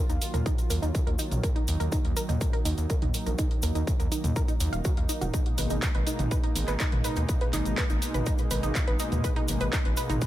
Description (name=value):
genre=melodic techno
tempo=123 BPM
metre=4/4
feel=straight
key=Eb minor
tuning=A4 = 440 Hz
part: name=warm analog pad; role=sustained chords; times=0.0-10.3 s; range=Cb3 to F4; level=-34 LUFS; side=right 1 dB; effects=chorus, sidechain pumping
part: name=wide unison pluck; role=arpeggios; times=0.0-10.2 s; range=Eb4 to F5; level=-34 LUFS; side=right 1 dB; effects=cassette tape, sidechain pumping, ping-pong delay
part: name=gritty driven synth bass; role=bass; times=0.1-10.2 s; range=Eb1 to Eb2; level=-29 LUFS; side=equal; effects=tube saturation, sidechain pumping
part: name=techno drum kit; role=drums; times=0.1-10.3 s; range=handclaps, hi-hat, toms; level=-34 LUFS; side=right 1 dB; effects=none
part: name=cabasa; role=percussion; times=0.1-10.3 s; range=none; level=-39 LUFS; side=left 2 dB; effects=none
part: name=electronic kick drum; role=drums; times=0.5-10.3 s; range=none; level=-27 LUFS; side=equal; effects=distortion
room=little or no reverb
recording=none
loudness=-25 LUFS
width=side -14 dB against mid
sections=0.0-10.3 A section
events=filter sweep on synth arpeggio sound 0.0-10.3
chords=0.0 Ebmadd9; 5.3 Abmadd9